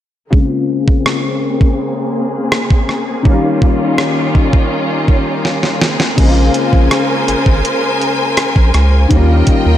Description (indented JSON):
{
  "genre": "contemporary R&B",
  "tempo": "82 BPM",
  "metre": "4/4",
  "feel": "straight",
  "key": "Bb dorian",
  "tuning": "A4 = 440 Hz",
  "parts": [
    { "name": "clear baby grand piano", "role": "accompaniment", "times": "0.3-9.8 s", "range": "Db3 to F4", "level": "-17 LUFS", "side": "left 3 dB", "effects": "ensemble chorus, low-pass filter" },
    { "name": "clear symphonic string section", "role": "sustained chords", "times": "0.3-9.8 s", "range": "Db3 to Ab5", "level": "-17 LUFS", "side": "equal", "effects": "low-pass filter" },
    { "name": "crisp 8-bit digital drum machine", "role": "drums", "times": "0.3-9.6 s", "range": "crash cymbal, hi-hat, kick drum, rim click, snare drum", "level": "-13 LUFS", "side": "right 1 dB", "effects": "vintage 12-bit sampler grit" },
    { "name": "round analog bass", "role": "bass", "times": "6.2-9.8 s", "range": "Ab1 to Eb2", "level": "-11 LUFS", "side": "right 1 dB", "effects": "none" }
  ],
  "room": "moderate lush hall reverb, RT60 2.6 s",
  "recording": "dreamy mix soaked in reverb",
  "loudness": "-11 LUFS",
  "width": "side -12 dB against mid",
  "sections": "0.3-6.2 A section; 6.2-9.8 B section",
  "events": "filter sweep 0.3-6.2; drum fill 5.5-6.2",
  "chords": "0.3 Bbm9; 3.3 Eb9; 5.8 Bbm9; 9.1 Eb9"
}